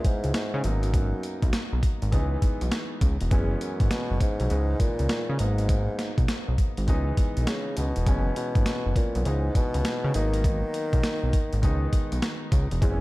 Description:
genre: R&B, new jack swing.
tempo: 101 BPM.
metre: 4/4.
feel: swing 64% on 16ths.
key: C# dorian.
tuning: A4 = 440 Hz.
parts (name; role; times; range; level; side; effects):
mellow bassoon; melody; 0.0-13.0 s; E2 to D#3; -31 LUFS; left 1 dB; ping-pong delay.
clear concert grand piano; accompaniment; 0.0-13.0 s; D#3 to B4; -34 LUFS; equal; none.
boom bap sampler-style drum kit; drums; 0.0-13.0 s; hi-hat, kick drum, snare drum; -25 LUFS; equal; none.
fat analog bass; bass; 0.2-13.0 s; E1 to C#3; -26 LUFS; equal; none.
room: small room ambience.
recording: dark, warm production.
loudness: -23 LUFS.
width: side -20 dB against mid.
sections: 0.0-13.0 A section.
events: none.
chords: 0.0 C#m9; 0.6 G#m7; 2.1 C#m9; 3.3 F#9sus4; 4.5 C#m9; 5.4 G#m7; 6.9 C#m9; 8.1 F#9sus4; 9.3 C#m9; 10.1 G#m7; 11.6 C#m9.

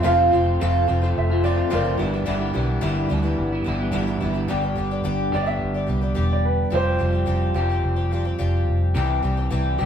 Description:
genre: folk rock and heartland rock.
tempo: 108 BPM.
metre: 4/4.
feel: straight.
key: G mixolydian.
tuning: A4 = 437 Hz.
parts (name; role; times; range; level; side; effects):
dark upright piano; second line; 0.0-8.4 s; Bb4 to F5; -29 LUFS; right 3 dB; none.
picked twelve-string acoustic guitar; accompaniment; 0.0-9.9 s; F2 to G4; -25 LUFS; left 1 dB; none.
mellow tonewheel organ; sustained chords; 0.0-4.5 s; B3 to C5; -33 LUFS; right 1 dB; slow rotary speaker.
electric guitar through a small old amp; riff; 0.0-9.9 s; F2 to G4; -25 LUFS; right 1 dB; none.
vintage muted fingered electric bass; bass; 0.1-9.9 s; E1 to D2; -23 LUFS; equal; none.
room: wet studio reverb, RT60 0.8 s.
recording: band playing live in one room.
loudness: -19 LUFS.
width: side -8 dB against mid.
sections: 0.0-4.5 A section; 4.5-9.9 B section.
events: upright piano solo 4.5-9.9.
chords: 0.0 F; 2.0 G6; 4.5 G; 6.7 Fsus2; 9.0 C.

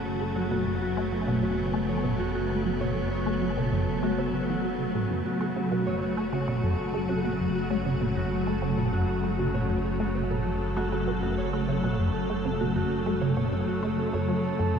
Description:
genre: ambient, sequencer-driven space music.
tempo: 98 BPM.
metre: 4/4.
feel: straight.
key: F# minor.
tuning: A4 = 437 Hz.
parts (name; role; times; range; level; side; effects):
evolving wavetable pad; sustained chords; 0.0-14.8 s; C#3 to A4; -28 LUFS; equal; ensemble chorus, built-in reverb.
Celtic harp; arpeggios; 0.0-14.8 s; F#4 to E6; -33 LUFS; right 1 dB; auto-pan, ping-pong delay, shimmer reverb.
analog drone; bass; 0.0-14.8 s; F#1; -36 LUFS; equal; chorus.
resonant blip pluck; riff; 0.2-14.8 s; F#2 to A3; -30 LUFS; equal; phaser, analog chorus, ping-pong delay.
room: wet huge ambient reverb, RT60 7.1 s.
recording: dark, warm production.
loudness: -25 LUFS.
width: side -7 dB against mid.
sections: 0.0-14.8 A section.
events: none.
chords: 0.0 F#m.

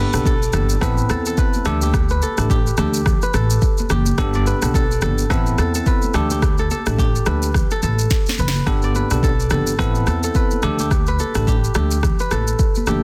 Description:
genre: afrobeats.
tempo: 107 BPM.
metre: 4/4.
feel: swing 58% on 16ths.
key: unclear.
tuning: A4 = 440 Hz.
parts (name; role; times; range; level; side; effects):
bell-like tine electric piano; accompaniment; 0.0-13.0 s; A3 to A4; -26 LUFS; equal; none.
kora; riff; 0.0-13.0 s; G4 to D5; -27 LUFS; equal; tape echo.
upright bass; bass; 0.0-13.0 s; F#1 to E2; -23 LUFS; equal; none.
afro-pop drum kit; drums; 0.1-13.0 s; kick drum, rim click, shaker, snare drum; -22 LUFS; equal; soft clipping on snare.
congas; percussion; 0.1-13.0 s; none; -32 LUFS; equal; none.
room: small room ambience.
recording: dense, heavily limited modern master.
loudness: -18 LUFS.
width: mono.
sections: 0.0-13.0 A section.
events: drum fill 8.1-8.7.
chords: 0.0 Gadd9; 0.8 Amadd9; 1.7 Dsus4; 4.2 Gadd9; 5.3 Amadd9; 6.1 Dsus4; 8.7 Gadd9; 9.8 Amadd9; 10.6 Dsus4.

